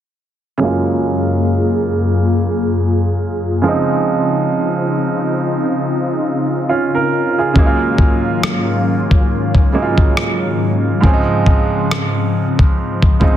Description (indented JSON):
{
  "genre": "contemporary R&B",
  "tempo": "69 BPM",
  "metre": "4/4",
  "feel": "swing 58% on 16ths",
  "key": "Db major",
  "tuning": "A4 = 440 Hz",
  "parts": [
    { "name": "clear baby grand piano", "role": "accompaniment", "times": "0.6-13.4 s", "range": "Ab2 to Bb4", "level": "-17 LUFS", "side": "right 3 dB", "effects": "low-pass filter" },
    { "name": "warm analog pad", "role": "sustained chords", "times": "0.6-13.4 s", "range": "Gb2 to Ab4", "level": "-18 LUFS", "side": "left 2 dB", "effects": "chorus, sidechain pumping, low-pass filter" },
    { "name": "dusty soul sampler-style drum kit", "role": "drums", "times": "7.6-13.4 s", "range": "kick drum, rim click", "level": "-13 LUFS", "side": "equal", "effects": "soft clipping on snare" }
  ],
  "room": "light reverb, digital ambience",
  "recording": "dense, heavily limited modern master",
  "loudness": "-13 LUFS",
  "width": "side -11 dB against mid",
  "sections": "0.6-13.4 A section",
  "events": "filter sweep 0.6-13.4",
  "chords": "0.6 Gbmaj9; 3.6 Dbmaj9; 7.6 Ab13sus4; 11.0 Dbmaj9/Ab"
}